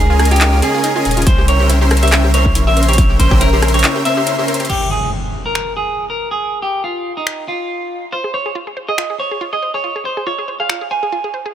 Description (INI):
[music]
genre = future bass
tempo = 140 BPM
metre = 4/4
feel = swing 55% on 16ths, half-time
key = F minor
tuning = A4 = 440 Hz
[part]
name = clean electric guitar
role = melody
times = 0.0-11.5 s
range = Eb4 to Ab5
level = -19 LUFS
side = right 1 dB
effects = sidechain pumping, low-pass filter, tape echo
[part]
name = wide unison pluck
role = arpeggios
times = 0.0-4.7, 8.1-11.5 s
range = Eb4 to C5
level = -25 LUFS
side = equal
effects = sidechain pumping, dub echo
[part]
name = dense compressed supersaw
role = riff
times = 0.0-4.7 s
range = Db4 to C6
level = -18 LUFS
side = equal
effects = sidechain pumping, low-pass filter
[part]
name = saturated sub bass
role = bass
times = 0.0-3.8 s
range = Eb1 to Db2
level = -14 LUFS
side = equal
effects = sidechain pumping
[part]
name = big-room dance drum kit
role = drums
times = 0.2-10.8 s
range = crash cymbal, finger snaps, handclaps, hi-hat, rim click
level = -19 LUFS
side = equal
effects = none
[part]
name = electronic kick drum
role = drums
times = 1.3-3.4 s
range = none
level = -14 LUFS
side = equal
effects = none
[part]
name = impact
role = sound effects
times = 4.7-6.4 s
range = none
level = -24 LUFS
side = equal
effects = none
[sound]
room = light reverb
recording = none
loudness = -13 LUFS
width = side -10 dB against mid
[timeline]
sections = 0.0-4.7 A section; 4.7-11.5 B section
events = drop 0.0-4.7; break 3.8-4.7; impact 4.7-6.4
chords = 0.0 Eb9sus4; 1.3 C7b9; 4.7 N.C.; 8.1 Fm